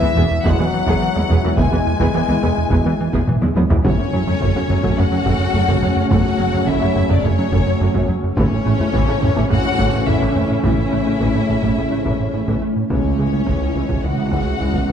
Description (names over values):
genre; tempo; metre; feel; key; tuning
cinematic, hybrid orchestral and electronic film score; 106 BPM; 4/4; straight; F# minor; A4 = 440 Hz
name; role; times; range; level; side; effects
rich symphonic violin section; melody; 0.0-14.9 s; C#5 to G#5; -26 LUFS; left 6 dB; none
rich symphonic violin section; second line; 0.0-14.9 s; C#4 to G#5; -28 LUFS; left 4 dB; none
warm symphonic viola section; accompaniment; 0.0-14.9 s; C#3 to G#4; -26 LUFS; right 1 dB; none
ethereal airy pad; sustained chords; 0.0-14.9 s; G#3 to E5; -25 LUFS; left 1 dB; ensemble chorus, built-in reverb
warm French horn section; sustained chords; 0.0-14.9 s; E3 to E4; -27 LUFS; left 6 dB; none
tight sequenced synth; arpeggios; 0.0-14.8 s; C#3 to A4; -28 LUFS; equal; none
rubbery square bass; riff; 0.0-14.9 s; C#2 to A3; -22 LUFS; right 2 dB; none
rich symphonic cello section; bass; 0.0-14.9 s; C#2 to A2; -26 LUFS; right 3 dB; none
taiko ensemble; drums; 0.0-14.9 s; none; -22 LUFS; equal; none
clear symphonic double bass section; bass; 0.2-14.9 s; E1 to C#2; -24 LUFS; right 3 dB; none
warm trombone section; sustained chords; 0.4-14.9 s; B2 to G#3; -29 LUFS; right 4 dB; none
room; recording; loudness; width
wet concert hall reverb, RT60 2.0 s; dark, warm production; -15 LUFS; side -8 dB against mid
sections
0.0-3.8 A section; 3.8-14.9 B section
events
drum fill 3.3-3.8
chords
0.0 E; 3.8 F#m; 8.4 A; 12.9 C#m